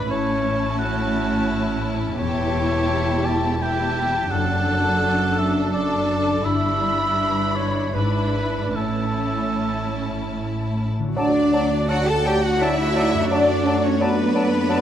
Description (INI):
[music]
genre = classical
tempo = 73-88 BPM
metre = 3/4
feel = rubato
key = D major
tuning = A4 = 440 Hz
[part]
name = warm studio violin section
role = melody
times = 0.0-14.8 s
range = B4 to B5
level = -31 LUFS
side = left 4 dB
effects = none
[part]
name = mellow oboe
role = second line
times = 0.0-14.8 s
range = F#4 to A5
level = -26 LUFS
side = right 1 dB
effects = none
[part]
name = rich studio violin section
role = second line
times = 0.0-14.8 s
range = E4 to A5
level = -29 LUFS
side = left 3 dB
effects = none
[part]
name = warm studio viola section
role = accompaniment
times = 0.0-14.8 s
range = C#4 to F#4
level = -28 LUFS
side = equal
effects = none
[part]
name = concert harp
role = arpeggios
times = 0.0-14.8 s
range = E2 to E5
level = -29 LUFS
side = left 6 dB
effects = none
[part]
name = rich studio cello section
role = bass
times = 0.0-14.8 s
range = E2 to A4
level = -25 LUFS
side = right 2 dB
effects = none
[part]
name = warm studio double bass section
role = bass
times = 0.0-14.8 s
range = E1 to F#2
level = -28 LUFS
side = right 3 dB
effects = none
[part]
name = clear clarinet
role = second line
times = 11.2-14.8 s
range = D5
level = -29 LUFS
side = equal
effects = none
[part]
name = silver concert flute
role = second line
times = 11.2-14.8 s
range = A5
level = -31 LUFS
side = left 2 dB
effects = none
[part]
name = warm bassoon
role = accompaniment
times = 11.2-14.8 s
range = F#3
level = -27 LUFS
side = right 1 dB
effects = none
[part]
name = dark French horn section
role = sustained chords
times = 11.2-14.8 s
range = A3 to F#4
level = -26 LUFS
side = left 3 dB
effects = none
[part]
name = timpani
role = percussion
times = 11.2-12.2 s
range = D3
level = -34 LUFS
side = left 2 dB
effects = none
[sound]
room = moderate scoring stage reverb, RT60 1.9 s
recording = none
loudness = -19 LUFS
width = side -10 dB against mid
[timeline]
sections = 0.0-11.2 A section; 11.2-14.8 B section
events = none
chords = 0.1 A; 2.2 A7/E; 4.3 D/F#; 6.4 Em7/G; 7.9 E7/G#; 8.8 A; 11.2 D; 13.3 D/F#